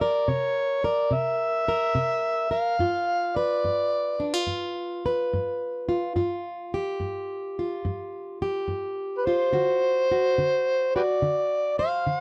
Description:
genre	acoustic country blues, solo or duo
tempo	71 BPM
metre	4/4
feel	swing 67% on 8ths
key	G mixolydian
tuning	A4 = 440 Hz
part	overdriven harmonica	melody	0.0-12.2 s	G4 to F#5	-26 LUFS	equal	none
part	fingerpicked plugged-in steel-string acoustic guitar	accompaniment	0.0-12.2 s	G2 to C5	-30 LUFS	equal	none
room	light reverb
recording	dry, close 1970s-style studio recording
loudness	-26 LUFS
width	mono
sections	0.0-12.2 A section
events	none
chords	0.0 C7; 2.8 G7; 9.5 D7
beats	0.27 1.11 1.95 | 2.79 3.64 4.48 5.32 | 6.16 7.00 7.85 8.69 | 9.53 10.37 11.21 12.05

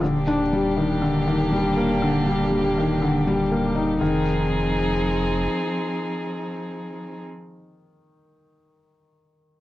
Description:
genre	piano and strings electronica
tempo	120 BPM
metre	4/4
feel	straight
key	F dorian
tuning	A4 = 440 Hz
part	dark string quartet	sustained chords	0.0-7.2 s	F3 to Ab4	-25 LUFS	equal	cassette tape
part	felt-muted upright piano	riff	0.0-9.6 s	D3 to Eb4	-22 LUFS	left 1 dB	cassette tape, analog delay
part	warm sub bass	bass	0.0-5.5 s	Eb1 to F1	-30 LUFS	right 1 dB	none
room	moderate studio reverb, RT60 0.5 s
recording	home recording on cassette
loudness	-20 LUFS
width	side -15 dB against mid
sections	0.0-4.0 A section; 4.0-8.0 B section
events	none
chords	0.0 Ebmaj7; 4.0 Fm7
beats	| 0.01 0.51 1.01 1.51 | 2.01 2.51 3.01 3.51 | 4.01 4.51 5.01 5.51 | 6.01 6.51 7.01 7.51

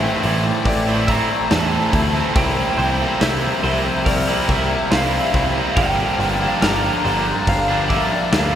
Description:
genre	post-rock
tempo	70 BPM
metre	4/4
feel	straight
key	unclear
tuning	A4 = 440 Hz
part	electric slide guitar	melody	0.0-8.6 s	D5 to Bb5	-24 LUFS	equal	none
part	soft additive organ-like pad	sustained chords	0.2-8.6 s	F3 to G5	-30 LUFS	equal	none
part	twelve-string electric guitar	arpeggios	0.0-8.6 s	Bb4 to E5	-29 LUFS	right 2 dB	none
part	crunchy overdriven guitar	riff	0.0-8.6 s	G2 to E4	-22 LUFS	right 3 dB	spring reverb
part	tight distorted guitar	riff	0.0-8.6 s	G2 to E4	-23 LUFS	left 4 dB	distortion
part	picked electric bass	bass	0.0-8.6 s	G1 to E2	-24 LUFS	equal	none
part	big rock drum kit	drums	0.2-8.5 s	hi-hat, kick drum, snare drum	-23 LUFS	equal	none
room	wet cathedral reverb, RT60 6.4 s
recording	recorded in a church or concert hall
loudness	-16 LUFS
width	side -10 dB against mid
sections	0.0-8.6 A section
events	none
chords	0.0 Am7; 2.4 C7sus4; 5.8 Gm7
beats	0.66 1.51 | 2.36 3.21 4.06 4.92 | 5.77 6.62 7.47 8.33

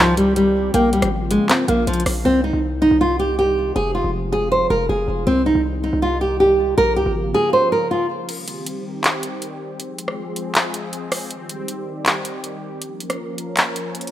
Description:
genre	hip hop, trap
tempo	159 BPM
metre	4/4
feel	half-time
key	C phrygian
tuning	A4 = 439 Hz
part	nylon-string guitar	melody	0.0-8.1 s	F3 to C5	-17 LUFS	right 1 dB	none
part	sweeping resonant pad	sustained chords	0.0-14.1 s	C3 to Bb4	-29 LUFS	left 1 dB	chorus
part	hard-hitting 808-style bass	bass	0.0-7.3 s	F1 to Db2	-24 LUFS	equal	none
part	trap drum kit	drums	0.2-2.1, 8.3-14.1 s	crash cymbal, handclaps, hi-hat, rim click	-20 LUFS	equal	none
part	warbly dusty pluck	second line	0.7-1.9 s	F5 to G5	-28 LUFS	left 1 dB	chorus, digital delay
room	moderate lush hall reverb, RT60 1.9 s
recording	rough home demo mix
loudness	-17 LUFS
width	side -12 dB against mid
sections	0.0-2.2 A section; 2.2-8.3 B section; 8.3-14.1 C section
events	break 8.3-14.1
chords	0.0 Cm; 0.7 Bbm; 2.2 Cm; 3.8 Fm; 5.3 Cm; 6.8 Bbm; 8.3 Cm; 9.8 Fm; 11.3 Cm; 12.8 Bbm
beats	0.36 | 0.74 1.12 1.50 1.87 | 2.25 2.63 3.00 3.38 | 3.76 4.14 4.51 4.89 | 5.27 5.65 6.02 6.40 | 6.78 7.16 7.53 7.91 | 8.29 8.66 9.04 9.42 | 9.80 10.17 10.55 10.93 | 11.31 11.68 12.06 12.44 | 12.82 13.19 13.57 13.95

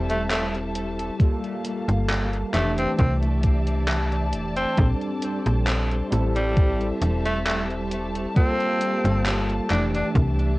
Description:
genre	vaporwave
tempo	67 BPM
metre	4/4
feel	swing 53% on 16ths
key	F major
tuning	A4 = 440 Hz
part	bell-like tine electric piano	accompaniment	0.0-10.6 s	E3 to A4	-28 LUFS	equal	medium stereo tremolo, wide subtle chorus, vintage 12-bit sampler grit, cassette tape, tape echo
part	dark symphonic string section	sustained chords	0.0-10.6 s	Bb3 to A5	-33 LUFS	left 1 dB	cassette tape
part	slap-like FM bass	bass	0.0-10.6 s	E1 to C2	-24 LUFS	equal	tube saturation
part	raspy tenor saxophone	melody	0.1-10.1 s	G3 to D4	-28 LUFS	equal	cassette tape, tape echo
part	gated 80s digital drum machine	drums	0.1-10.6 s	handclaps, hi-hat	-29 LUFS	equal	gated reverb, overdrive, cassette tape
part	electronic kick drum	drums	1.2-10.3 s	none	-20 LUFS	equal	overdrive, cassette tape
room	light reverb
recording	home recording on cassette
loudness	-21 LUFS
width	side -20 dB against mid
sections	0.0-10.6 A section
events	none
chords	0.0 Am7; 1.2 Gm9; 2.5 Fmaj13; 4.8 Bbmaj13; 6.1 Am7; 8.4 Gm9; 9.7 Fmaj13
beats	0.30 | 1.20 2.10 2.99 3.89 | 4.78 5.68 6.57 7.47 | 8.36 9.26 10.15

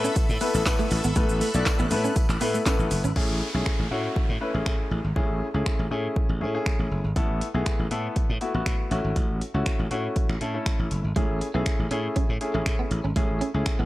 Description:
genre	dance-pop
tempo	120 BPM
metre	4/4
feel	straight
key	A major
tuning	A4 = 440 Hz
part	clear baby grand piano	accompaniment	0.0-13.8 s	A3 to D5	-29 LUFS	left 2 dB	none
part	sweeping resonant pad	sustained chords	0.0-3.1 s	A4 to F#6	-33 LUFS	left 2 dB	chorus, sidechain pumping
part	clean electric guitar	riff	0.0-3.1, 11.2-13.9 s	A3 to C#4	-31 LUFS	right 4 dB	ensemble chorus
part	slap bass	bass	0.0-13.9 s	F#1 to A2	-27 LUFS	equal	sidechain pumping
part	deep house drum kit	drums	0.0-13.8 s	crash cymbal, finger snaps, handclaps, hi-hat, kick drum, shaker, snare drum	-26 LUFS	equal	none
part	tambourine	percussion	0.2-3.0 s	none	-44 LUFS	left 1 dB	none
part	downlifter	sound effects	3.2-7.2 s	none	-39 LUFS	equal	none
room	little or no reverb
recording	dry, gritty hardware recording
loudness	-23 LUFS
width	side -17 dB against mid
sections	0.0-3.2 A section; 3.2-13.9 B section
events	none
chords	0.0 Esus4; 3.2 Amaj7; 7.2 Esus4/A; 8.9 F#m7; 11.2 Amaj7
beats	0.16 0.66 | 1.16 1.66 2.16 2.66 | 3.16 3.66 4.16 4.66 | 5.16 5.66 6.16 6.66 | 7.16 7.66 8.16 8.66 | 9.16 9.66 10.16 10.66 | 11.16 11.66 12.16 12.66 | 13.16 13.66

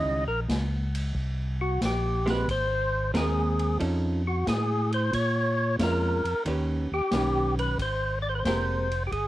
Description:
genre	soul jazz organ trio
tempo	90 BPM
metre	4/4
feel	swing 68% on 8ths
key	Ab major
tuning	A4 = 438 Hz
part	percussive tonewheel organ	melody	0.0-9.3 s	Gb4 to Eb5	-28 LUFS	equal	slow rotary speaker, overdrive, cassette tape, plate reverb
part	vintage hollow-body jazz guitar	accompaniment	0.0-8.9 s	Eb3 to B4	-31 LUFS	right 2 dB	plate reverb
part	tonewheel organ	bass	0.0-9.3 s	F1 to Bb2	-28 LUFS	equal	overdrive, slow rotary speaker
part	swinging big-band drum kit	drums	0.5-9.3 s	hi-hat, kick drum, ride cymbal, snare drum	-34 LUFS	equal	cassette tape
room	moderate booth ambience, RT60 0.2 s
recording	home recording on cassette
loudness	-24 LUFS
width	side -15 dB against mid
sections	0.0-7.8 A section; 7.8-9.3 B section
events	tonewheel organ solo 0.0-7.8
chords	0.0 Eb7 (rootless); 2.5 Abadd9; 3.8 F7b13; 5.1 Bbm7; 6.5 Ebaug7; 7.8 Abmaj9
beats	0.49 1.15 1.81 | 2.48 3.14 3.80 4.47 | 5.13 5.79 6.46 7.12 | 7.78 8.45 9.11

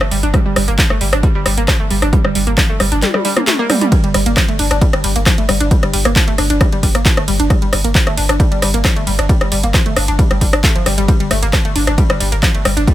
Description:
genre	driving peak-time techno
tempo	134 BPM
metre	4/4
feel	straight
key	G minor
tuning	A4 = 440 Hz
part	analog pluck	riff	0.0-12.9 s	F3 to D4	-19 LUFS	equal	chorus, sidechain pumping, dub echo
part	saturated sub bass	bass	0.0-12.9 s	G1	-19 LUFS	equal	overdrive, sidechain pumping, low-pass filter
part	techno drum kit	drums	0.0-12.9 s	handclaps, hi-hat, ride cymbal, rim click, toms	-17 LUFS	equal	none
part	electronic kick drum	drums	0.3-12.9 s	none	-14 LUFS	equal	none
room	little or no reverb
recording	none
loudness	-11 LUFS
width	side -14 dB against mid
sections	0.0-12.9 A section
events	drum fill 3.0-3.9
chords	0.0 G5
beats	| 0.34 0.79 1.23 1.68 | 2.13 2.58 3.02 3.47 | 3.92 4.37 4.82 5.26 | 5.71 6.16 6.61 7.05 | 7.50 7.95 8.40 8.85 | 9.29 9.74 10.19 10.64 | 11.08 11.53 11.98 12.43 | 12.88

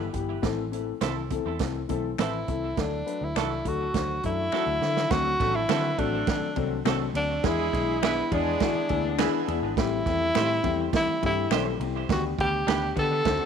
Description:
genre	uptempo 1960s-style soul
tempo	103 BPM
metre	4/4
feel	straight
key	unclear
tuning	A4 = 440 Hz
part	dark upright piano	accompaniment	0.0-13.5 s	E3 to C5	-30 LUFS	left 12 dB	none
part	vintage muted picked electric bass	bass	0.0-13.4 s	G1 to D3	-32 LUFS	equal	none
part	swinging big-band drum kit	drums	0.1-13.4 s	hi-hat, kick drum, ride cymbal, snare drum	-30 LUFS	right 6 dB	none
part	semi-hollow electric guitar	stabs	1.0-12.8 s	C4 to C5	-36 LUFS	right 11 dB	spring reverb, tape echo
part	finger snaps	percussion	1.0-12.8 s	none	-39 LUFS	left 14 dB	none
part	breathy tenor saxophone	melody	2.2-13.5 s	D4 to A4	-27 LUFS	equal	none
part	mellow horn section	second line	5.4-9.6 s	E3 to B4	-34 LUFS	right 13 dB	none
part	electric guitar through a small old amp	riff	8.3-13.5 s	G3 to G#4	-35 LUFS	left 10 dB	none
room	light reverb, small room ambience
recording	1960s-style stereo with parts hard left and right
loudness	-24 LUFS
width	side -7 dB against mid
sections	0.0-5.1 A section; 5.1-13.5 B section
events	drum fill 4.5-5.1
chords	0.4 Am; 2.8 D; 5.1 D7; 7.4 E7; 9.8 Am7; 12.1 G/D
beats	| 0.43 1.02 1.60 2.19 | 2.77 3.36 3.94 4.53 | 5.11 5.69 6.28 6.86 | 7.44 8.02 8.61 9.19 | 9.77 10.35 10.93 11.52 | 12.10 12.68 13.26

